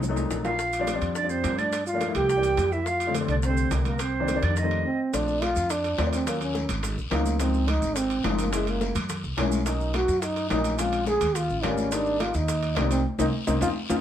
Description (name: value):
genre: Afro-Cuban jazz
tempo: 212 BPM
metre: 4/4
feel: straight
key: F major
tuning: A4 = 440 Hz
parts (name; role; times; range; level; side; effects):
- upright bass; bass; 0.0-14.0 s; Gb1 to G2; -28 LUFS; equal; none
- bongos; percussion; 0.0-14.0 s; none; -36 LUFS; left 4 dB; none
- congas; percussion; 0.0-14.0 s; none; -35 LUFS; equal; none
- maracas; percussion; 0.0-14.0 s; none; -40 LUFS; right 5 dB; none
- warm baby grand piano; accompaniment; 0.1-14.0 s; D3 to F4; -30 LUFS; left 4 dB; none
- timbales; percussion; 0.2-14.0 s; none; -35 LUFS; right 4 dB; none
- breathy trombone; melody; 0.4-14.0 s; Ab3 to Ab4; -27 LUFS; right 1 dB; plate reverb
- breathy bright concert flute; second line; 0.4-5.0 s; Bb4 to G5; -30 LUFS; right 4 dB; none
- guiro; percussion; 5.1-14.0 s; none; -40 LUFS; left 4 dB; none
room: moderate studio reverb, RT60 0.6 s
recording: heard from further back in the room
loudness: -23 LUFS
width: side -10 dB against mid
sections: 0.0-5.1 A section; 5.1-14.0 B section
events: drum fill 0.0-0.6, 13.3-14.0; stop 4.8; band accent 13.0-14.0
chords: 0.0 F7b9; 0.6 Bb6; 1.7 Gm7; 2.3 C7; 2.9 F6; 4.0 Cm7; 4.6 F9; 5.1 Bbmaj7; 6.3 Ebm7; 6.8 Ab7; 7.4 Dbmaj7; 8.5 Gb7; 9.7 Bmaj7; 10.8 Bbm7; 11.4 Eb7; 11.9 Abmaj7; 13.0 Cm7